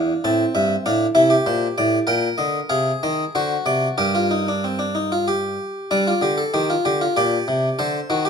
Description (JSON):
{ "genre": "classical, baroque-style 3-part fugue for harpsichord", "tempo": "96 BPM", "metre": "3/4", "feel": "straight", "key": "G minor", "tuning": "A4 = 441 Hz", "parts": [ { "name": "harpsichord", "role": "solo", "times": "0.0-8.3 s", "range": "E2 to A5", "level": "-18 LUFS", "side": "equal", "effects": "none" } ], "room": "moderate large studio reverb, RT60 1.1 s", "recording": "minimal, uncompressed stereo recording", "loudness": "-18 LUFS", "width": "side -6 dB against mid", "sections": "0.0-5.9 A section; 5.9-8.3 B section", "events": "none", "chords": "0.2 Am; 1.5 Gm; 2.7 Ab/C; 3.3 D7; 4.0 Gm; 5.9 G5; 7.2 Gm/Bb" }